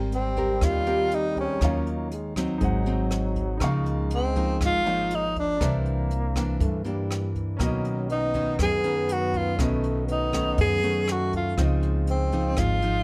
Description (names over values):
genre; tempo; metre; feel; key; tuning
bossa nova; 120 BPM; 4/4; straight; unclear; A4 = 440 Hz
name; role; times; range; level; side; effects
breathy trombone; second line; 0.0-13.0 s; Gb3 to B3; -36 LUFS; equal; none
clear grand piano; accompaniment; 0.0-13.0 s; A3 to Db6; -40 LUFS; equal; none
nylon-string guitar; accompaniment; 0.0-13.0 s; F#2 to Bb4; -32 LUFS; equal; none
upright bass; bass; 0.0-13.0 s; Ab1 to G2; -30 LUFS; equal; none
breathy tenor saxophone; melody; 0.1-13.0 s; C4 to Ab4; -28 LUFS; equal; plate reverb
jazz brush drum kit; drums; 0.1-12.9 s; hi-hat, kick drum, rim click; -33 LUFS; equal; none
room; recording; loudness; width
light reverb; none; -25 LUFS; mono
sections
0.0-13.0 A section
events
none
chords
0.0 Abmaj9; 1.6 Ebm9; 2.6 Ab7; 3.6 Db69; 5.6 C9; 7.6 Bmaj9; 9.6 B9; 11.6 Dbmaj9